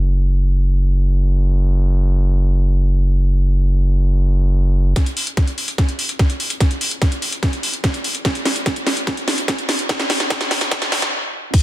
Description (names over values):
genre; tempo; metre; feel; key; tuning
psychedelic trance; 146 BPM; 4/4; straight; unclear; A4 = 440 Hz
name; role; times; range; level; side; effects
round analog bass; bass; 0.0-4.9 s; F#1; -14 LUFS; equal; none
electronic kick drum; drums; 5.0-11.6 s; none; -16 LUFS; equal; none
techno drum kit; drums; 5.0-11.6 s; crash cymbal, hi-hat, ride cymbal, snare drum; -19 LUFS; equal; low-pass filter on hats, low-pass filter on snare, low-pass filter on cymbals, low-pass filter on room
room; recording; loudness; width
little or no reverb; dense, heavily limited modern master, high-pass filter; -16 LUFS; side -16 dB against mid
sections
0.0-5.0 A section; 5.0-11.5 B section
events
build-up 5.0-11.5; drum fill 5.0-11.1; filter sweep 5.0-11.5; stop 11.1-11.5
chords
none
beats
| 0.03 0.44 0.85 1.26 | 1.67 2.08 2.50 2.91 | 3.32 3.73 4.14 4.55 | 4.96 5.37 5.78 6.19 | 6.61 7.02 7.43 7.84 | 8.25 8.66 9.07 9.48 | 9.89 10.30 10.71 11.13 | 11.54